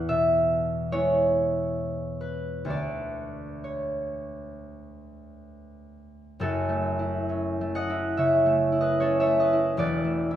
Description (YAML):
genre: classical, solo harp piece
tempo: 61-77 BPM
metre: 4/4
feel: rubato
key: F# minor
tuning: A4 = 440 Hz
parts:
  - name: concert harp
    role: solo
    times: 0.0-10.4 s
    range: E1 to B5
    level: -24 LUFS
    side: equal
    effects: none
room: moderate recital hall reverb, RT60 1.4 s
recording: minimal, uncompressed stereo recording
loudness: -23 LUFS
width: side -11 dB against mid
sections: 0.0-6.4 A section; 6.4-10.4 B section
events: none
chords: 0.0 Eadd9; 2.7 Dmaj7; 6.4 F#m7; 9.8 E9sus4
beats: 0.10 0.93 1.78 | 2.69 3.64 4.58 5.50 | 6.43 7.30 8.18 8.99 | 9.78